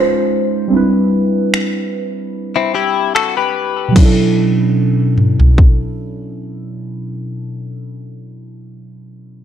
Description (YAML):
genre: contemporary R&B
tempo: 74 BPM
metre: 4/4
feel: swing 54% on 16ths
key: unclear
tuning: A4 = 440 Hz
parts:
  - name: muted felt-like synth keys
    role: accompaniment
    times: 0.0-9.4 s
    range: B2 to B#4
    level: -16 LUFS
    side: right 1 dB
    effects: chorus, phaser
  - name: trap drum kit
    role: drums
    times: 1.5-5.8 s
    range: crash cymbal, finger snaps, kick drum, toms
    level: -12 LUFS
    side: equal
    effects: none
  - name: direct-recorded clean electric guitar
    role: arpeggios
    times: 2.6-3.9 s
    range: C4 to B4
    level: -16 LUFS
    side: left 9 dB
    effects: analog chorus, ping-pong delay
room: light reverb, digital ambience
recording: dark, warm production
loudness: -12 LUFS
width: side -10 dB against mid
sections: 0.0-4.0 A section; 4.0-7.2 B section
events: none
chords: 0.0 C#maj9; 0.7 Cmaj9; 4.0 Bm11